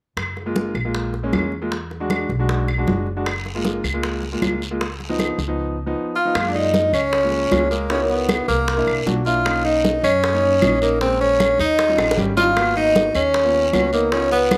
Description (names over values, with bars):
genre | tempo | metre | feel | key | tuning
Afro-Cuban jazz | 155 BPM | 4/4 | straight | F# major | A4 = 439 Hz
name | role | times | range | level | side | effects
upright bass | bass | 0.2-14.6 s | F#1 to F#2 | -29 LUFS | equal | none
bongos | percussion | 0.2-14.6 s | none | -30 LUFS | equal | none
claves | percussion | 0.2-14.6 s | none | -32 LUFS | equal | none
congas | percussion | 0.2-14.6 s | none | -27 LUFS | equal | none
warm concert grand piano | accompaniment | 0.5-14.6 s | E#3 to G#4 | -28 LUFS | equal | none
guiro | percussion | 3.3-14.6 s | none | -36 LUFS | equal | none
vibraphone with soft mallets | melody | 6.2-14.6 s | A#4 to E#5 | -22 LUFS | equal | slapback echo
clear tenor saxophone | second line | 6.2-14.6 s | A#3 to E#4 | -24 LUFS | equal | none
room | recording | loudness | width
little or no reverb | recorded outdoors, with no room sound | -20 LUFS | mono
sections
0.2-6.4 A section; 6.4-14.6 B section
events
drum fill 12.0-12.6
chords
0.2 F#maj7; 1.7 E7; 3.3 F#maj7; 4.8 C#7; 6.4 F#maj9; 7.9 C#m11; 8.7 C9; 9.5 Bmaj9; 11.0 A#m7; 11.8 D#7; 12.6 G#m7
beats
| 0.17 0.56 0.95 1.33 | 1.72 2.10 2.49 2.88 | 3.26 3.65 4.04 4.42 | 4.81 5.20 5.58 5.97 | 6.36 6.75 7.13 7.52 | 7.91 8.29 8.68 9.07 | 9.46 9.85 10.24 10.62 | 11.01 11.40 11.79 12.18 | 12.57 12.96 13.34 13.73 | 14.12 14.51